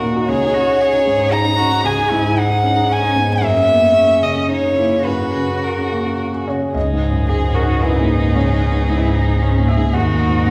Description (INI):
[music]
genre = neoclassical piano and strings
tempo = 113 BPM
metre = 3/4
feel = rubato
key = C# dorian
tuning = A4 = 440 Hz
[part]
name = rich violin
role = melody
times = 0.0-10.5 s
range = G#4 to A#5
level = -20 LUFS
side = equal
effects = none
[part]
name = rich cello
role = second line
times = 0.0-10.5 s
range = A#3 to G#4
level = -26 LUFS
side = equal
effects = none
[part]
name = felt-muted upright piano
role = accompaniment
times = 0.0-10.5 s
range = C#2 to F#5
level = -21 LUFS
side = equal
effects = none
[part]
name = sub bass with octave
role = bass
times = 6.7-10.5 s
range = C#2 to D#2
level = -21 LUFS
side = equal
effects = none
[part]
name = rich viola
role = accompaniment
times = 6.8-10.5 s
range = D#4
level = -27 LUFS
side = equal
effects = none
[sound]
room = wet recital hall reverb, RT60 1.7 s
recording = recorded in a church or concert hall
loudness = -16 LUFS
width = mono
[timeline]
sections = 0.0-6.8 A section; 6.8-10.5 B section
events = none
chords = 0.3 C#sus2; 3.4 F#add9; 6.8 C#sus2; 9.9 D#m